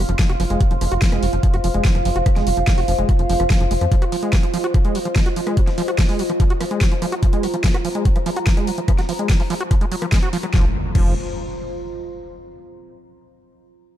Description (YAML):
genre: psychedelic trance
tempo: 145 BPM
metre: 4/4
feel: straight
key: F phrygian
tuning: A4 = 440 Hz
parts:
  - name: overtone-sweeping drone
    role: sustained chords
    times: 0.0-10.6 s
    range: F4 to F5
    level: -27 LUFS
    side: right 1 dB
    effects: chorus, built-in reverb, vintage 12-bit sampler grit, sidechain pumping
  - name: overdriven acid bass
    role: riff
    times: 0.0-11.1 s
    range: F3 to Gb4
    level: -25 LUFS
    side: equal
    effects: distortion, auto-pan, sidechain pumping, ping-pong delay
  - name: round analog bass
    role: bass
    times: 0.0-3.9, 10.5-11.1 s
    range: F1 to F2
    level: -21 LUFS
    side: equal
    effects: none
  - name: deep dark ambient pad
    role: texture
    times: 0.0-12.2 s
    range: F4 to C6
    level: -27 LUFS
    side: equal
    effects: chorus, built-in reverb, sidechain pumping
  - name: big-room dance drum kit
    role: drums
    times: 0.1-11.0 s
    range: crash cymbal, hi-hat, rim click, snare drum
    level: -27 LUFS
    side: equal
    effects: overdrive
  - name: electronic kick drum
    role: drums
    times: 0.2-11.0 s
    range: none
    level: -17 LUFS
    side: equal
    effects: none
  - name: impact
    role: sound effects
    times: 10.5-12.2 s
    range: none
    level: -28 LUFS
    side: equal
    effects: none
room: little or no reverb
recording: dark, warm production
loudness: -16 LUFS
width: side -12 dB against mid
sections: 0.0-10.5 A section; 10.5-12.2 B section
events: filter sweep on synth drone 0.0-10.5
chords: 0.0 F5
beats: 0.19 | 0.60 1.02 1.43 1.85 | 2.26 2.67 3.09 3.50 | 3.92 4.33 4.74 5.16 | 5.57 5.99 6.40 6.81 | 7.23 7.64 8.05 8.47 | 8.88 9.29 9.71 10.12 | 10.54 10.95 11.36 11.78